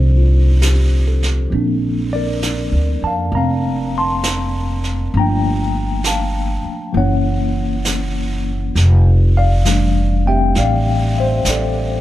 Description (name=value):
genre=jazz ballad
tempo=67 BPM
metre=4/4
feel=swing 67% on 8ths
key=F major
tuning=A4 = 441 Hz
part: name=tine electric piano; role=accompaniment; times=0.0-12.0 s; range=Fb3 to C6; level=-19 LUFS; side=left 1 dB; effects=medium stereo tremolo
part: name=upright bass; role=bass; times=0.0-12.0 s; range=F1 to F2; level=-16 LUFS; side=equal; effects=none
part: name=vintage brush drum kit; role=drums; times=0.6-12.0 s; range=brushed snare drum, hi-hat, snare drum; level=-25 LUFS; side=right 2 dB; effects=none
room=light reverb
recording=band playing live in one room, lossy compression artefacts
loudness=-14 LUFS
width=side -14 dB against mid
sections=0.0-12.0 A section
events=none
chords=0.0 F9; 1.5 Bbmaj7; 5.1 Gm9; 7.0 Gb7; 8.8 Fmaj13